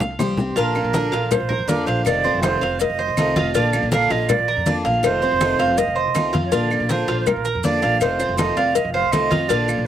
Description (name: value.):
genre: latin, Cuban son and guajira.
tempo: 161 BPM.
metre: 4/4.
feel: straight.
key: Bb major.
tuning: A4 = 440 Hz.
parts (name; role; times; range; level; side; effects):
Cuban tres; arpeggios; 0.0-9.9 s; F4 to F5; -24 LUFS; right 2 dB; none.
upright bass; bass; 0.0-9.9 s; F1 to F2; -26 LUFS; equal; none.
bongos and cowbell; percussion; 0.0-9.7 s; none; -25 LUFS; left 9 dB; none.
congas; percussion; 0.0-9.9 s; none; -26 LUFS; left 1 dB; none.
maracas; percussion; 0.0-9.9 s; none; -35 LUFS; right 10 dB; none.
picked steel-string acoustic guitar; accompaniment; 0.2-9.9 s; C3 to G4; -24 LUFS; left 2 dB; slapback echo.
claves; percussion; 0.2-9.9 s; none; -32 LUFS; equal; none.
bright silver concert flute; second line; 0.6-9.9 s; Bb4 to F5; -22 LUFS; right 6 dB; slapback echo.
room: little or no reverb.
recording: recorded outdoors, with no room sound.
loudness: -17 LUFS.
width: side -10 dB against mid.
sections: 0.6-9.9 A section.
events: drum fill 0.0-0.6.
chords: 0.0 Fsus2; 0.6 Bb; 2.1 F7; 3.5 Bb; 5.0 F7; 6.5 Bb; 8.0 F7.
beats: 0.20 | 0.57 0.94 1.31 1.69 | 2.06 2.43 2.80 3.17 | 3.55 3.92 4.29 4.66 | 5.03 5.41 5.78 6.15 | 6.52 6.89 7.27 7.64 | 8.01 8.38 8.75 9.13 | 9.50 9.87.